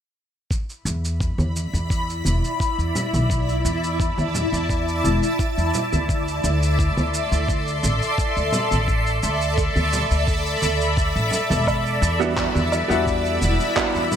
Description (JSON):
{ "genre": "sunset chillout", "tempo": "86 BPM", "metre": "4/4", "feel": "straight", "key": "E minor", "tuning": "A4 = 440 Hz", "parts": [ { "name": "shimmering ambient pad", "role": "sustained chords", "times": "1.5-14.2 s", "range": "E4 to C6", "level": "-23 LUFS", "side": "equal", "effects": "chorus, built-in reverb, phaser" }, { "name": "electronic kick drum", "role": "drums", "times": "0.5-13.9 s", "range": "none", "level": "-24 LUFS", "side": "equal", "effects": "none" }, { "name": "electronic shaker, woodblock and handclaps", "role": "drums", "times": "0.5-14.2 s", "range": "none", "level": "-29 LUFS", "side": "right 2 dB", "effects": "gated reverb" }, { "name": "upright bass", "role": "bass", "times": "0.9-14.1 s", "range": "E1 to E2", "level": "-23 LUFS", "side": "equal", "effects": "none" }, { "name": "congas", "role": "percussion", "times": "1.4-14.2 s", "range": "none", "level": "-27 LUFS", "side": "right 1 dB", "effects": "none" }, { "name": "bright baby grand piano", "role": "accompaniment", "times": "12.2-14.1 s", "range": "G3 to F#4", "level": "-23 LUFS", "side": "moving between left 2 dB and right 7 dB", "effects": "auto-pan, digital delay" } ], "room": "light reverb, small room reverb", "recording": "bright 1980s-style digital production", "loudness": "-19 LUFS", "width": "side -9 dB against mid", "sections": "0.5-14.2 A section", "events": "none", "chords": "0.5 E5; 6.1 D5; 11.7 Em7", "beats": "| 0.51 1.21 1.91 2.60 | 3.30 4.00 4.70 5.39 | 6.09 6.79 7.49 8.18 | 8.88 9.58 10.28 10.97 | 11.67 12.37 13.07 13.77" }